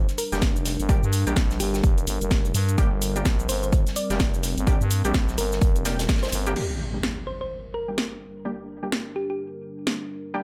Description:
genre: bass house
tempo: 127 BPM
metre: 4/4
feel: swing 60% on 16ths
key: G minor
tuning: A4 = 440 Hz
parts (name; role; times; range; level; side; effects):
- dark analog pad; sustained chords; 0.1-10.4 s; G3 to Bb4; -36 LUFS; equal; chorus, phaser, sidechain pumping
- growling FM bass; bass; 0.0-6.5 s; F1 to G2; -29 LUFS; equal; tube saturation, sidechain pumping
- house drum kit; drums; 0.1-10.0 s; crash cymbal, hi-hat, shaker, snare drum; -31 LUFS; equal; none
- unplugged drum kit; drums; 0.1-6.5 s; hi-hat, snare drum; -40 LUFS; equal; none
- thumb-piano-like synth pluck; melody; 0.2-9.4 s; G4 to D5; -34 LUFS; equal; chorus, tape echo
- orchestra-hit-like synth stab; stabs; 0.3-10.4 s; G3 to G4; -34 LUFS; equal; built-in reverb, sidechain pumping, tape echo
- electronic kick drum; drums; 0.4-6.2 s; none; -24 LUFS; equal; none
- impact; sound effects; 6.6-8.4 s; none; -35 LUFS; equal; none
room: digital ambience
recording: none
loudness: -24 LUFS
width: mono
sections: 0.0-6.6 A section; 6.6-10.4 B section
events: band accent 6.1; impact 6.6-8.4; filter sweep on synth stab 6.6-10.4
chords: 0.0 Gm

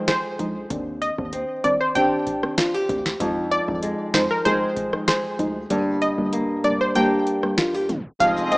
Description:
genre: dancehall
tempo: 96 BPM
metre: 4/4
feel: straight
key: F dorian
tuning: A4 = 439 Hz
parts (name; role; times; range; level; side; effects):
- deep mellow chord stab; accompaniment; 0.0-8.6 s; Eb3 to Eb4; -27 LUFS; equal; chorus, sidechain pumping
- flamenco guitar; arpeggios; 0.0-8.6 s; F2 to Ab4; -24 LUFS; equal; tape echo
- analog pluck; melody; 0.1-8.6 s; Bb4 to G5; -22 LUFS; equal; chorus, tape echo
- booming analog drum machine; drums; 0.1-8.6 s; hi-hat, kick drum, rim click, snare drum; -27 LUFS; equal; none
- hard-hitting 808-style bass; bass; 0.4-8.6 s; F1 to F2; -34 LUFS; equal; none
- warm studio string section; sustained chords; 8.2-8.6 s; C4 to Eb5; -25 LUFS; equal; sidechain pumping
- maracas; percussion; 8.2-8.6 s; none; -41 LUFS; right 1 dB; none
room: light reverb, small room ambience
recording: rough home demo mix, tape stop, small speaker sound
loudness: -20 LUFS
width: side -25 dB against mid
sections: 0.0-8.2 A section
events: kick muted 5.7-8.2; tape stop 7.9-8.2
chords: 0.0 Fm7; 0.7 Cmadd9; 3.2 Fm7; 5.7 Gm

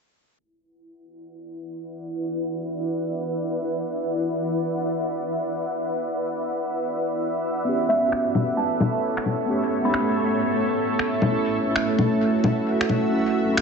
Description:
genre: future garage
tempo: 132 BPM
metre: 4/4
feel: swing 63% on 16ths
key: E dorian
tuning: A4 = 441 Hz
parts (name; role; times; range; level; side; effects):
- granular cloud pad; sustained chords; 1.4-13.6 s; A3 to F#5; -25 LUFS; equal; built-in reverb
- mellow tine electric piano; accompaniment; 7.6-13.6 s; A3 to G4; -24 LUFS; right 1 dB; slow stereo tremolo, tape echo
- buzzing kalimba; melody; 7.9-10.0 s; E5 to B5; -26 LUFS; right 1 dB; analog delay
- electronic finger snaps and bongos; drums; 8.1-13.6 s; none; -24 LUFS; left 2 dB; low-pass filter on snare, studio reverb, low-pass filter on perc
room: moderate echo chamber reverb, RT60 1.5 s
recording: echo-heavy mix, low-pass filter, nothing above 8.0 kHz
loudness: -21 LUFS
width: side -5 dB against mid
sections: 0.4-13.6 A section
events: filter sweep 0.4-13.6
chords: 0.4 E5; 7.7 A7; 11.3 F#m7

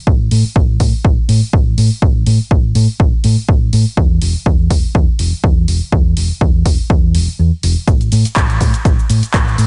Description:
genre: filtered disco house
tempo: 123 BPM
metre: 4/4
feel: swing 55% on 16ths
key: unclear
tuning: A4 = 440 Hz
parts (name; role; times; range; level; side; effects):
- hollow-body short-scale fingered electric bass; bass; 0.1-9.7 s; E1 to A2; -16 LUFS; equal; tube saturation, sidechain pumping, low-pass filter
- electronic kick drum; drums; 0.1-9.4 s; none; -15 LUFS; equal; none
- punchy analog drum machine; drums; 0.3-9.7 s; handclaps, hi-hat, shaker; -24 LUFS; equal; sidechain pumping on hats, sidechain pumping on perc
room: little or no reverb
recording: nothing above 10.9 kHz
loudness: -13 LUFS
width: mono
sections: 0.0-9.7 A section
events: filter sweep on fingered electric bass 0.0-9.7; kick drops out 7.4-7.9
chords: none

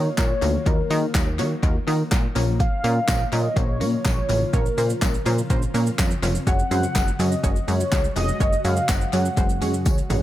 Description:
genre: dance-pop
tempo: 124 BPM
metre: 4/4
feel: straight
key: Bb minor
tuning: A4 = 441 Hz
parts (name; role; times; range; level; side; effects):
- warm velvety synth lead; melody; 0.0-9.9 s; Bb4 to Gb5; -27 LUFS; left 1 dB; chorus, tape echo
- punchy chord stab; accompaniment; 0.0-10.2 s; Ab3 to Db5; -29 LUFS; equal; chorus, sidechain pumping
- ethereal airy pad; sustained chords; 0.1-10.2 s; Db3 to Gb4; -33 LUFS; left 2 dB; ensemble chorus, built-in reverb, sidechain pumping
- plucky analog bass; bass; 0.0-10.2 s; F1 to Eb3; -23 LUFS; equal; sidechain pumping
- deep house drum kit; drums; 0.2-10.2 s; handclaps, hi-hat, kick drum, shaker, snare drum, toms; -23 LUFS; equal; overdrive, tape echo
- tambourine; percussion; 0.2-10.0 s; none; -40 LUFS; left 7 dB; none
room: light reverb, digital ambience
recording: echo-heavy mix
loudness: -19 LUFS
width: side -14 dB against mid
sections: 0.0-10.2 A section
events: drum fill 9.9-10.2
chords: 0.0 Ebmadd9; 2.4 Bbm; 6.5 Gbsus2

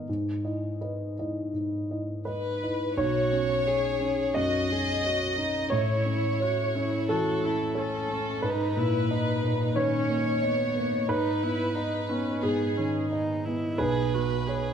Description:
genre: neoclassical piano and strings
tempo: 89 BPM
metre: 4/4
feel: rubato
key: B major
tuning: A4 = 437 Hz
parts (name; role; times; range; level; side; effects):
- dark grand piano; accompaniment; 0.0-14.7 s; B1 to D#5; -27 LUFS; equal; none
- warm chamber violin section; melody; 2.3-14.7 s; G#4 to D#5; -30 LUFS; left 1 dB; none
- dark viola; accompaniment; 3.0-14.7 s; B3 to G#4; -33 LUFS; right 2 dB; none
room: moderate scoring stage reverb, RT60 1.9 s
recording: none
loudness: -25 LUFS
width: side -8 dB against mid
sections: 0.0-3.0 A section; 3.0-14.7 B section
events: none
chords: 0.1 Emaj7/G#; 3.0 Bsus2; 5.7 A; 8.4 G#madd9; 11.1 G#madd11; 13.8 Bsus2

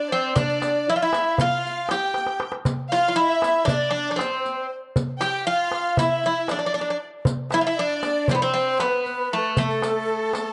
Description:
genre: Turkish makam ensemble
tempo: 235 BPM (eighths)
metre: 9/8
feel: straight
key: A makam nihavent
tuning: A4 = 441 Hz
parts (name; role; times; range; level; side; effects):
- Greek bouzouki; melody; 0.0-10.5 s; A3 to G4; -25 LUFS; equal; none
- breathy low ney; second line; 0.0-10.5 s; A4 to G5; -31 LUFS; equal; none
- warm studio violin section; second line; 0.0-10.5 s; A4 to G5; -31 LUFS; equal; none
- darbuka; percussion; 0.4-10.5 s; none; -28 LUFS; equal; none
- riq; percussion; 0.4-10.5 s; none; -36 LUFS; equal; none
room: moderate spring reverb, RT60 1.7 s, small room ambience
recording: nothing above 11.0 kHz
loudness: -23 LUFS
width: mono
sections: 0.0-10.5 A section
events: drum fill 2.2-2.7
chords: none

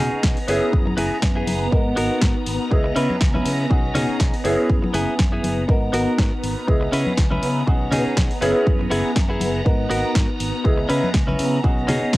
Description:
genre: filtered disco house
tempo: 121 BPM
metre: 4/4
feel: swing 54% on 16ths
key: unclear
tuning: A4 = 440 Hz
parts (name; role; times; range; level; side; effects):
- warm grand piano; accompaniment; 0.0-12.2 s; B3 to D#5; -25 LUFS; equal; phaser, sidechain pumping, low-pass filter, cassette tape
- phased string machine; sustained chords; 0.0-12.2 s; B3 to A#5; -27 LUFS; equal; ensemble chorus, phaser, sidechain pumping, low-pass filter, cassette tape
- direct-recorded clean electric guitar; riff; 0.0-12.2 s; B3 to B4; -24 LUFS; equal; sidechain pumping, low-pass filter, cassette tape
- fingered electric bass; bass; 0.0-12.2 s; F#1 to C#3; -26 LUFS; equal; sidechain pumping, low-pass filter
- tube shaker and congas; percussion; 0.1-12.2 s; none; -28 LUFS; left 1 dB; sidechain pumping on perc, low-pass filter on perc
- electronic kick drum; drums; 0.2-12.2 s; none; -19 LUFS; equal; none
- house drum kit; drums; 0.2-12.2 s; hi-hat, snare drum; -27 LUFS; equal; none
room: light reverb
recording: home recording on cassette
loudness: -17 LUFS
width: side -18 dB against mid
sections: 0.0-12.2 A section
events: none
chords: 0.5 F#9sus4; 1.7 G#m9; 2.7 C#m7; 3.7 B69; 4.5 F#9sus4; 5.7 G#m9; 6.7 C#m7; 7.7 B69; 8.4 F#9sus4; 9.7 G#m9; 10.6 C#m7; 11.6 B69

